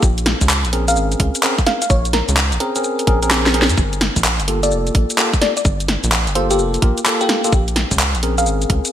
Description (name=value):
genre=UK garage, two-step garage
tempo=128 BPM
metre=4/4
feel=swing 65% on 16ths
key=unclear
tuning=A4 = 439 Hz
part: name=bell-like FM electric piano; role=melody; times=0.0-8.5 s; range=G4 to F5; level=-23 LUFS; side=left 1 dB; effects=chorus, phaser, ping-pong delay
part: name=rubbery square bass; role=bass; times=0.0-8.8 s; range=F1 to F2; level=-20 LUFS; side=equal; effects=none
part: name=electronic kick drum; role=drums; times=0.0-8.8 s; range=none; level=-17 LUFS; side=equal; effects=overdrive
part: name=garage drum kit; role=drums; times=0.0-8.9 s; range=handclaps, hi-hat, shaker, snare drum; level=-18 LUFS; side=equal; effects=overdrive, gated reverb
part: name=tine electric piano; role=stabs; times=0.7-8.9 s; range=Bb3 to Bb4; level=-22 LUFS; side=equal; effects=wide subtle chorus, ping-pong delay
room=light reverb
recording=bright 1980s-style digital production, vinyl crackle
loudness=-14 LUFS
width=side -10 dB against mid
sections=0.0-8.9 A section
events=kick drops out 3.3-3.8; drum fill 3.3-3.8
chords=0.0 Bbm9; 3.8 Gm9; 7.5 Bbm9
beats=| 0.03 0.49 0.96 1.43 | 1.90 2.37 2.84 3.31 | 3.78 4.25 4.71 5.18 | 5.65 6.12 6.59 7.06 | 7.53 8.00 8.46